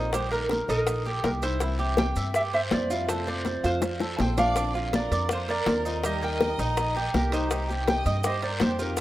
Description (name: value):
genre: latin, Cuban son and guajira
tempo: 163 BPM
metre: 4/4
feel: straight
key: unclear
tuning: A4 = 440 Hz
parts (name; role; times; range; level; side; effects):
- metal-body resonator slide guitar; melody; 0.0-9.0 s; Bb4 to A5; -30 LUFS; right 1 dB; none
- nylon-string guitar; accompaniment; 0.0-9.0 s; C3 to G4; -36 LUFS; left 3 dB; none
- Cuban tres; arpeggios; 0.0-9.0 s; D4 to E5; -30 LUFS; right 2 dB; none
- upright bass; bass; 0.0-9.0 s; Bb1 to G2; -30 LUFS; equal; none
- bongos; percussion; 0.1-9.0 s; none; -30 LUFS; left 4 dB; none
- congas; percussion; 0.1-9.0 s; none; -31 LUFS; left 1 dB; none
- guiro; percussion; 0.1-9.0 s; none; -40 LUFS; left 2 dB; none
- maracas; percussion; 0.1-9.0 s; none; -42 LUFS; right 4 dB; none
- timbales; percussion; 0.1-9.0 s; none; -40 LUFS; right 5 dB; none
- bright studio violin section; second line; 4.2-9.0 s; F4 to F5; -36 LUFS; right 1 dB; none
room: light reverb, small room ambience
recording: rough home demo mix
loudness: -24 LUFS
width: side -15 dB against mid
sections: 0.0-9.0 A section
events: drum fill 3.5-4.6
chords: 0.1 Eb/Bb; 1.6 C; 3.1 F; 4.6 Bbadd9; 6.0 Eb; 7.5 Cm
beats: | 0.14 0.51 0.88 1.25 | 1.62 1.99 2.35 2.72 | 3.09 3.46 3.83 4.20 | 4.57 4.93 5.30 5.67 | 6.04 6.41 6.78 7.14 | 7.51 7.88 8.24 8.61 | 8.98